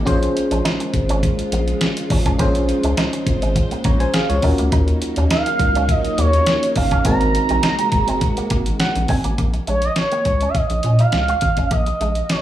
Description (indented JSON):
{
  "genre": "early-eighties boogie funk",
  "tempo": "103 BPM",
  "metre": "4/4",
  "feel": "straight",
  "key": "Bb minor",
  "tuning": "A4 = 441 Hz",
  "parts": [
    { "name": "soft string machine", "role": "sustained chords", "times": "0.0-9.4 s", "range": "C3 to C5", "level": "-27 LUFS", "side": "equal", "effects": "ensemble chorus" },
    { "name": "electric guitar with an envelope filter", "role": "riff", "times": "0.0-12.1 s", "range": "Ab3 to F4", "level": "-28 LUFS", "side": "right 3 dB", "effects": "analog chorus" },
    { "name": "rubbery square bass", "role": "bass", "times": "0.0-12.2 s", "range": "Gb1 to Bb2", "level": "-19 LUFS", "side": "equal", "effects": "none" },
    { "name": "FM electric piano", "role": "accompaniment", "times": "0.1-9.4 s", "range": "C4 to Bb5", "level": "-23 LUFS", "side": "equal", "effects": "chorus" },
    { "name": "detuned 8-bit digital drum machine", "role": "drums", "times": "0.1-12.4 s", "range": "hi-hat, kick drum, snare drum", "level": "-21 LUFS", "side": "equal", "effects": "none" },
    { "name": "expressive synth lead", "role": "melody", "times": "5.3-12.4 s", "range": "Db5 to Bb5", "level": "-20 LUFS", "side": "right 2 dB", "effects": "chorus" }
  ],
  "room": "light reverb",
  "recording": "small room reverb",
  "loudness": "-16 LUFS",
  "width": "side -12 dB against mid",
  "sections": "0.0-9.4 A section; 9.4-12.4 B section",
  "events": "FM electric piano fill 8.5-9.4",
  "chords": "0.1 Bbm7; 4.4 Ebm7; 7.1 Ab9; 9.4 Bbm"
}